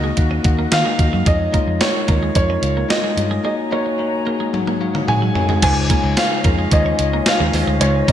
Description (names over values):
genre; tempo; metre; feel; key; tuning
1980s-style pop; 110 BPM; 4/4; straight; Db major; A4 = 439 Hz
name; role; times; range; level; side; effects
warm grand piano; melody; 0.0-8.1 s; Db5 to Ab5; -22 LUFS; right 1 dB; none
bell-like tine electric piano; accompaniment; 0.0-8.1 s; Ab2 to Ab5; -22 LUFS; left 4 dB; none
bright large flute ensemble; sustained chords; 0.0-8.1 s; Db4 to Bb5; -29 LUFS; left 2 dB; none
twelve-string electric guitar; riff; 0.0-8.1 s; Gb3 to Db4; -27 LUFS; right 4 dB; wide subtle chorus
vintage muted fingered electric bass; bass; 0.0-8.0 s; Db2 to Eb3; -20 LUFS; equal; none
gated 80s digital drum machine; drums; 0.2-8.1 s; crash cymbal, hi-hat, kick drum, snare drum, tambourine, toms; -18 LUFS; equal; gated reverb, gated reverb snare
cowbell; percussion; 5.6-7.9 s; none; -31 LUFS; right 3 dB; none
room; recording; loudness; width
moderate plate reverb, RT60 3.2 s; bright 1980s-style digital production; -15 LUFS; side -10 dB against mid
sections
0.0-5.6 A section; 5.6-8.1 B section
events
tine electric piano fill 4.5-5.6; drum fill 4.5-5.6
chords
0.0 Ebm; 1.3 Dbadd9; 3.4 Ab7sus4; 5.6 Dbadd9